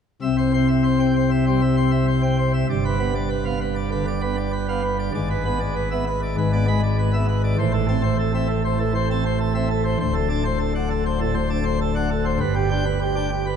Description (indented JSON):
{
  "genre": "classical, organ toccata",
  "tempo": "99 BPM",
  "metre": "4/4",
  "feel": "straight",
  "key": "C major",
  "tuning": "A4 = 440 Hz",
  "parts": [
    { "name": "pipe organ, plenum", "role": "solo", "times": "0.2-13.6 s", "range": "D1 to C6", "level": "-19 LUFS", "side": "equal", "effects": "none" }
  ],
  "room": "wet church reverb, RT60 3.6 s",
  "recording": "dark, warm production",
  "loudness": "-19 LUFS",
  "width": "side -7 dB against mid",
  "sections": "0.2-13.6 A section",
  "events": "none",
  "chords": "0.2 C; 2.7 G7; 5.1 E7/G#; 7.6 Am; 10.0 D7; 12.4 G"
}